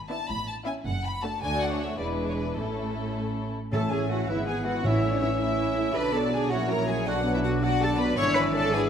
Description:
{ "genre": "quick classical-period movement for symphony orchestra", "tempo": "107 BPM (dotted quarters)", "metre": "6/8", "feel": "straight", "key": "A major", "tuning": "A4 = 440 Hz", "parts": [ { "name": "dark studio cello section", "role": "bass", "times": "0.0-8.9 s", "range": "D2 to C#5", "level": "-31 LUFS", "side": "right 2 dB", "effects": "none" }, { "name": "rich studio double bass section", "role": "bass", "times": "0.0-8.9 s", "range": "E1 to D2", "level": "-32 LUFS", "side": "right 3 dB", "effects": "none" }, { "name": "rich studio violin section", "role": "melody", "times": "0.1-8.9 s", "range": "A4 to B5", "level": "-35 LUFS", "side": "left 3 dB", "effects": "none" }, { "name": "clear studio violin section", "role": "second line", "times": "0.1-8.8 s", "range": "E4 to C#6", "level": "-33 LUFS", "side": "left 3 dB", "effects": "none" }, { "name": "warm studio viola section", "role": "accompaniment", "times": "0.1-8.9 s", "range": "D3 to A4", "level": "-33 LUFS", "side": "right 1 dB", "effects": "none" }, { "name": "clear clarinet", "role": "second line", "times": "3.7-8.9 s", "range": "C#5 to F#5", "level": "-34 LUFS", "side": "left 3 dB", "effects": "none" }, { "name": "warm bassoon", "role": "accompaniment", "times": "3.7-8.9 s", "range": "B3 to E4", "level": "-33 LUFS", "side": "right 3 dB", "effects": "none" }, { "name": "dark French horn section", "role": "sustained chords", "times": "3.7-8.9 s", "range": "E3 to D4", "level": "-31 LUFS", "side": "left 5 dB", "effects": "none" }, { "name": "timpani", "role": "percussion", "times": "3.7-5.4 s", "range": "A2", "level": "-31 LUFS", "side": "equal", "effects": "none" } ], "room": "moderate scoring stage reverb, RT60 1.7 s", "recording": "none", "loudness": "-24 LUFS", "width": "side -8 dB against mid", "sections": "0.0-3.7 A section; 3.7-8.9 B section", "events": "none", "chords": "0.3 A; 0.9 D/F#; 1.4 D; 2.0 E7; 2.6 A; 4.3 E/G#; 4.8 A; 6.0 Bm; 6.5 F#/A#; 7.1 Bm; 8.2 E7/G#" }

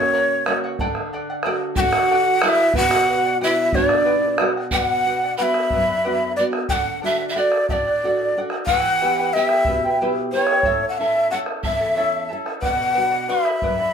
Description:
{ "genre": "andean folk, Andean ensemble", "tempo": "61 BPM (dotted quarters)", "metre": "6/8", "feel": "straight", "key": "B minor", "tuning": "A4 = 442 Hz", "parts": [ { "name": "breathy large quena", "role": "melody", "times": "0.0-13.9 s", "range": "C#5 to G5", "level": "-19 LUFS", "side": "left 1 dB", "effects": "none" }, { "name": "breathy mellow pan flute", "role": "second line", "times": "0.0-13.9 s", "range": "C#4 to B5", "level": "-26 LUFS", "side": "right 3 dB", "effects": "none" }, { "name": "charango", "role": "accompaniment", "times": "0.0-13.9 s", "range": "E4 to A5", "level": "-27 LUFS", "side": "right 1 dB", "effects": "none" }, { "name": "nylon-string guitar", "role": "accompaniment", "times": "0.0-13.9 s", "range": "E2 to B4", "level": "-28 LUFS", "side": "right 1 dB", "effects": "none" }, { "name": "bombo", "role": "percussion", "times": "0.5-13.8 s", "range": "none", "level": "-25 LUFS", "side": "right 1 dB", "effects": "none" } ], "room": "moderate studio reverb, RT60 0.5 s", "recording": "band playing live in one room", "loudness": "-17 LUFS", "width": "side -7 dB against mid", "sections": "0.0-4.7 A section; 4.7-13.9 B section", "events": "none", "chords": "0.0 F#; 0.8 D; 2.8 Bm; 6.7 D; 8.7 Em; 10.7 A; 12.6 Bm" }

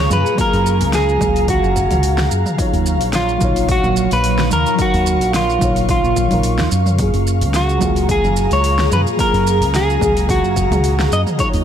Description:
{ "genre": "sunset chillout", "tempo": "109 BPM", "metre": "4/4", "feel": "swing 54% on 16ths", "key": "F# major", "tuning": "A4 = 440 Hz", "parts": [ { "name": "electric guitar at the edge of break-up", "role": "melody", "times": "0.0-11.5 s", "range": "E#4 to D#5", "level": "-19 LUFS", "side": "equal", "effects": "digital delay, shimmer reverb" }, { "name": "mellow FM electric piano", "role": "accompaniment", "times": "0.0-11.6 s", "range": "F#3 to E#5", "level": "-22 LUFS", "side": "moving between left 2 dB and right 4 dB", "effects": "chorus, auto-pan, digital delay, shimmer reverb" }, { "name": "ethereal airy pad", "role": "sustained chords", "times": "0.0-11.6 s", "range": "F#3 to C#6", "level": "-23 LUFS", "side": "equal", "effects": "ensemble chorus, built-in reverb, tremolo, shimmer reverb" }, { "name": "fingered electric bass", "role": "bass", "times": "0.0-11.6 s", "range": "F#1 to F#2", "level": "-18 LUFS", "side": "equal", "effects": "none" }, { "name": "deep house drum kit", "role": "drums", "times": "0.1-11.6 s", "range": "hi-hat, shaker, snare drum, toms", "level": "-24 LUFS", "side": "right 1 dB", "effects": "overdrive" }, { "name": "electronic kick drum", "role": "drums", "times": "0.4-11.5 s", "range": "none", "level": "-22 LUFS", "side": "equal", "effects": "overdrive" } ], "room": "light reverb", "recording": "none", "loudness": "-13 LUFS", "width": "side -9 dB against mid", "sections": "0.0-11.6 A section", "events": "none", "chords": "0.0 F#maj9; 2.6 D#m9; 7.0 F#maj9" }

